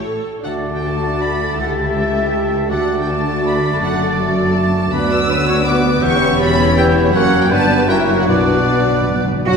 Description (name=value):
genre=classical, dramatic, fast romantic movement for symphony orchestra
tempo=161 BPM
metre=3/4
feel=rubato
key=D major, B minor from 4.9 s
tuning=A4 = 440 Hz
part: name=warm symphonic violin section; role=melody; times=0.0-9.6 s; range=F#4 to E6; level=-23 LUFS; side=left 1 dB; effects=none
part: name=dark studio violin section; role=second line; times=0.0-9.6 s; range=A4 to F#5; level=-26 LUFS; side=left 4 dB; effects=none
part: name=warm symphonic viola section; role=accompaniment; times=0.0-9.6 s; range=F#3 to A4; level=-24 LUFS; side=right 1 dB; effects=none
part: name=concert harp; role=arpeggios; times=0.0-9.6 s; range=F#2 to A5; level=-24 LUFS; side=left 6 dB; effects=none
part: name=dark studio double bass section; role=bass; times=0.0-9.5 s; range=E1 to F#2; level=-24 LUFS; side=right 3 dB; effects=none
part: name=dark symphonic cello section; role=bass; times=0.0-9.5 s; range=C#2 to F#4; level=-22 LUFS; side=equal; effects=none
part: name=mellow French horn section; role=sustained chords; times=0.4-9.6 s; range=F#3 to G4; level=-22 LUFS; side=left 1 dB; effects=none
part: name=clear clarinet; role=second line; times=0.5-9.6 s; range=B3 to G4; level=-25 LUFS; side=right 2 dB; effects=none
part: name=clear oboe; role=second line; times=0.5-9.6 s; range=F#4 to E5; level=-25 LUFS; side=right 3 dB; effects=none
part: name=mellow hollow concert flute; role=second line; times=0.5-9.6 s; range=F#4 to A6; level=-24 LUFS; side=equal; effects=none
part: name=warm bassoon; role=accompaniment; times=0.5-9.6 s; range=F#3 to D4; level=-24 LUFS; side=right 1 dB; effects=none
part: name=timpani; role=percussion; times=8.3-9.4 s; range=B2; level=-24 LUFS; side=equal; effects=none
room=wet scoring stage reverb, RT60 1.9 s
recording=heard from further back in the room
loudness=-13 LUFS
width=side -5 dB against mid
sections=0.5-9.5 A section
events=timpani fill 8.3-9.5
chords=0.5 D; 1.6 A7/C#; 2.7 D; 3.8 D/F#; 4.9 Bm/D; 6.0 C#m7b5/E; 7.1 F#; 7.5 G; 7.9 F#7b9; 8.3 Bm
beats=0.06 | 0.45 0.83 1.21 | 1.59 1.96 2.33 | 2.71 3.08 3.46 | 3.83 4.20 4.57 | 4.93 5.30 5.67 | 6.04 6.40 6.77 | 7.14 7.50 7.89 | 8.29 8.68 9.08 | 9.47